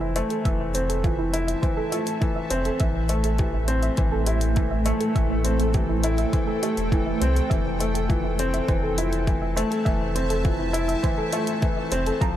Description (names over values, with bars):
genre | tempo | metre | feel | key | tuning
piano and strings electronica | 102 BPM | 4/4 | straight | F major | A4 = 438 Hz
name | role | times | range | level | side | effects
granular cloud pad | sustained chords | 0.1-12.4 s | A3 to A5 | -31 LUFS | right 1 dB | built-in reverb, sidechain pumping
soft round pluck | arpeggios | 0.0-12.3 s | E4 to Bb5 | -31 LUFS | right 3 dB | chorus, sidechain pumping, ping-pong delay
felt-muted upright piano | riff | 0.0-12.4 s | E3 to E4 | -26 LUFS | left 2 dB | ping-pong delay
warm sub bass | bass | 0.0-12.4 s | E1 to C2 | -26 LUFS | equal | sidechain pumping
electronic hi-hat | drums | 0.2-12.3 s | none | -33 LUFS | left 2 dB | none
electronic kick drum | drums | 0.5-12.3 s | none | -24 LUFS | equal | none
room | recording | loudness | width
light reverb | lossy compression artefacts | -21 LUFS | side -12 dB against mid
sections
0.0-12.4 A section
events
none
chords
0.0 Fmaj7; 2.8 Am7; 7.5 Fmaj7